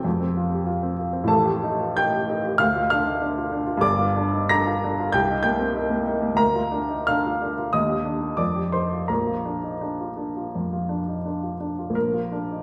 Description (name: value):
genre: classical, romantic character piece for solo piano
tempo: 79-100 BPM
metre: 4/4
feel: rubato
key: Bb major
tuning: A4 = 442 Hz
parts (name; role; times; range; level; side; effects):
- warm baby grand piano; solo; 0.0-12.6 s; G1 to Bb6; -24 LUFS; equal; none
room: wet recital hall reverb, RT60 1.7 s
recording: heard from further back in the room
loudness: -24 LUFS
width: mono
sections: 0.0-11.9 A section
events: none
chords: 0.1 F5; 1.3 F9/A; 2.6 Dm; 3.8 Gm7; 5.1 Cm7; 6.4 Bb/D; 7.7 Ebmaj7; 8.4 Fsus2; 9.1 Bb